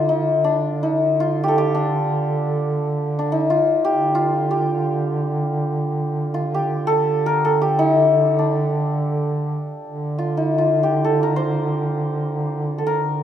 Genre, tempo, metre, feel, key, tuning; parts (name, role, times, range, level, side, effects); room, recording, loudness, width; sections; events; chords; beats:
Persian modal ensemble; free time; D dastgah shur; A4 = 440 Hz
santur; melody; 0.0-13.2 s; D4 to C5; -20 LUFS; left 1 dB
mellow duduk; drone; 0.0-13.2 s; D3; -22 LUFS; right 1 dB
wet small room reverb, RT60 0.6 s; rough home demo mix; -18 LUFS; side -10 dB against mid
0.0-9.9 A section; 9.9-13.2 A section
free time